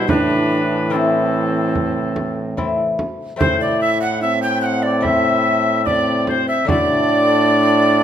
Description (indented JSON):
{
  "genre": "classical, renaissance-style consort dance",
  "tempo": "73 BPM",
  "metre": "4/4",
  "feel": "straight",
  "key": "A dorian",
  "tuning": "A4 = 440 Hz",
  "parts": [
    { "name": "warm oboe", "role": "melody", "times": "0.0-8.0 s", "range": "A4 to G5", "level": "-21 LUFS", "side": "left 5 dB", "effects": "none" },
    { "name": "tenor recorder", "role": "second line", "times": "0.0-8.0 s", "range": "C4 to G5", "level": "-20 LUFS", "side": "right 4 dB", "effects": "none" },
    { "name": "lute", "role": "accompaniment", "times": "0.0-8.0 s", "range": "A2 to F#4", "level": "-24 LUFS", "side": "left 3 dB", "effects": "none" },
    { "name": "warm trombone", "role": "accompaniment", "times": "0.0-8.0 s", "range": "E3 to E4", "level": "-22 LUFS", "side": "left 2 dB", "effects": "none" },
    { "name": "clear trombone", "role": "bass", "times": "0.0-8.0 s", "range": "A2 to B2", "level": "-22 LUFS", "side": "right 2 dB", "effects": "none" },
    { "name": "frame drum", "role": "percussion", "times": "0.1-7.1 s", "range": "none", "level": "-23 LUFS", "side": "right 2 dB", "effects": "none" }
  ],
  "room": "moderate recital hall reverb, RT60 1.3 s",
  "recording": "none",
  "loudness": "-15 LUFS",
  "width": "side -9 dB against mid",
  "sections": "0.0-3.4 A section; 3.4-8.0 B section",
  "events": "none",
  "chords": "0.1 Am; 6.7 D/A"
}